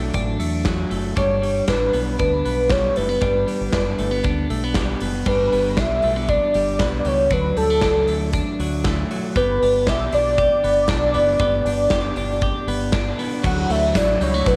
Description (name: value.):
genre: jangly indie pop.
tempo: 117 BPM.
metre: 4/4.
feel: straight.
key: unclear.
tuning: A4 = 440 Hz.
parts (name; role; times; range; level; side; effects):
twelve-string electric guitar; arpeggios; 0.0-14.6 s; F#3 to G4; -27 LUFS; equal; cassette tape.
deep dub fingered electric bass; bass; 0.0-14.6 s; F#1 to E2; -28 LUFS; equal; none.
big rock drum kit; drums; 0.1-14.6 s; crash cymbal, hi-hat, kick drum, ride cymbal, snare drum; -28 LUFS; equal; cassette tape.
warm velvety synth lead; melody; 1.2-14.6 s; A4 to F#5; -22 LUFS; equal; chorus, cassette tape.
lush unison pad; sustained chords; 13.4-14.6 s; D4 to F#4; -33 LUFS; equal; chorus, cassette tape.
tambourine; percussion; 13.7-14.6 s; none; -46 LUFS; equal; none.
room: light reverb, small room ambience.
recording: home recording on cassette.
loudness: -20 LUFS.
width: mono.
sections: 0.0-5.3 A section; 5.3-13.4 B section; 13.4-14.6 C section.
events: none.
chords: 0.0 D; 1.2 G; 7.3 D; 9.4 G; 13.4 Dadd9.